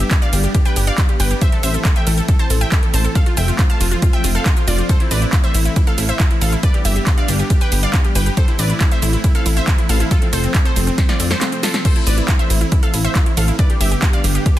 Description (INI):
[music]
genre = uplifting trance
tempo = 138 BPM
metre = 4/4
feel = straight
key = A minor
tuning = A4 = 440 Hz
[part]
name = wide unison pluck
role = melody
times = 0.0-14.6 s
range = C4 to A5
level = -22 LUFS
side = equal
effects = cassette tape, sidechain pumping, ping-pong delay
[part]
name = lush unison pad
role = sustained chords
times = 0.0-14.6 s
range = D3 to D4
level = -26 LUFS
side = equal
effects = chorus, sidechain pumping
[part]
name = plucky analog bass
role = bass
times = 0.0-14.4 s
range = F1 to F2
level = -17 LUFS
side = equal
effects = sidechain pumping
[part]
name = big-room dance drum kit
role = drums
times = 0.0-14.6 s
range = crash cymbal, handclaps, hi-hat, ride cymbal, shaker, snare drum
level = -23 LUFS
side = right 1 dB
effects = sidechain pumping on hats, studio reverb, sidechain pumping on cymbals, sidechain pumping on perc
[part]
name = electronic kick drum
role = drums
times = 0.1-14.5 s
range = none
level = -15 LUFS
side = equal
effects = studio reverb
[sound]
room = little or no reverb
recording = dense, heavily limited modern master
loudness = -14 LUFS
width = side -14 dB against mid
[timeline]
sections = 0.0-14.6 A section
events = drum fill 11.0-11.8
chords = 0.0 G; 1.4 Am; 3.2 F; 4.9 Am; 6.6 G; 8.4 Am; 10.1 F; 11.8 Am; 13.6 G